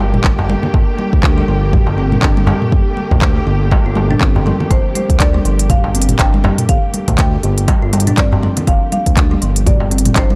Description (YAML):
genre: afro house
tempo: 121 BPM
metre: 4/4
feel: swing 57% on 16ths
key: G minor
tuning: A4 = 440 Hz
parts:
  - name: muted studio string section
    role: sustained chords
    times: 0.0-10.4 s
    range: D3 to G4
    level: -26 LUFS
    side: equal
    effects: sidechain pumping
  - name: smooth synth bass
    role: bass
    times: 0.0-10.4 s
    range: G1 to D2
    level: -19 LUFS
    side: equal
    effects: sidechain pumping
  - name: afro-pop drum kit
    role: drums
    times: 0.1-10.3 s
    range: handclaps, hi-hat, toms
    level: -22 LUFS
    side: equal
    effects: small room ambience
  - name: congas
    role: percussion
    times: 0.1-10.4 s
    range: none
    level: -24 LUFS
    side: equal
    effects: none
  - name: electronic kick drum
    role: drums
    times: 0.2-10.3 s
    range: none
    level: -16 LUFS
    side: equal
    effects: small room ambience
  - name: darbuka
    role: percussion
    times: 0.4-10.3 s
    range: none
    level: -24 LUFS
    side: equal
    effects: none
  - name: kalimba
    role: arpeggios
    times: 1.0-10.4 s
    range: F3 to G4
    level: -25 LUFS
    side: equal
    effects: sidechain pumping, analog delay
  - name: marimba with medium hard mallets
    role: melody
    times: 4.7-10.4 s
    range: C5 to G5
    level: -26 LUFS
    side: equal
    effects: analog delay
room: small room ambience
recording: dry, gritty hardware recording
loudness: -14 LUFS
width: mono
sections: 0.0-10.4 A section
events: none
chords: 0.0 Gmadd9